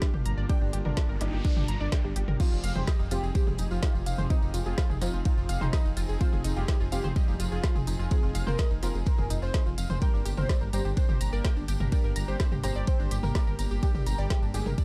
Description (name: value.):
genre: melodic techno.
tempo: 126 BPM.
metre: 4/4.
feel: straight.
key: F dorian.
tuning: A4 = 444 Hz.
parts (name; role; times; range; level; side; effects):
fat analog lead; melody; 0.0-14.8 s; D4 to C5; -41 LUFS; equal; phaser, analog chorus, sidechain pumping, digital delay.
rich studio string section; sustained chords; 0.0-14.8 s; F3 to Ab4; -43 LUFS; equal; sidechain pumping.
tight sequenced synth; arpeggios; 0.0-14.8 s; D4 to Bb5; -42 LUFS; equal; chorus, phaser, sidechain pumping, digital delay.
filtered dub chord stab; stabs; 0.0-14.8 s; F3 to G4; -43 LUFS; equal; ensemble chorus, sidechain pumping, digital delay.
deep house drum kit; drums; 0.0-14.8 s; crash cymbal, hi-hat, ride cymbal, snare drum, toms; -37 LUFS; equal; none.
electronic kick drum; drums; 0.0-14.8 s; none; -29 LUFS; equal; none.
dark detuned saw bass; bass; 0.1-14.7 s; F1 to G1; -33 LUFS; equal; sidechain pumping.
noise sweep; sound effects; 1.0-2.4 s; none; -48 LUFS; equal; none.
tambourine; percussion; 2.4-14.8 s; none; -48 LUFS; equal; none.
room: little or no reverb.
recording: dark, warm production.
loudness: -28 LUFS.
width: mono.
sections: 0.0-14.8 A section.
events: noise sweep 1.0-2.4.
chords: 0.0 Gm; 2.4 Fm7; 10.0 Gm.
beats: 0.02 | 0.49 0.97 1.45 1.92 | 2.40 2.88 3.35 3.83 | 4.30 4.78 5.26 5.73 | 6.21 6.68 7.16 7.64 | 8.11 8.59 9.07 9.54 | 10.02 10.49 10.97 11.45 | 11.92 12.40 12.88 13.35 | 13.83 14.30 14.78.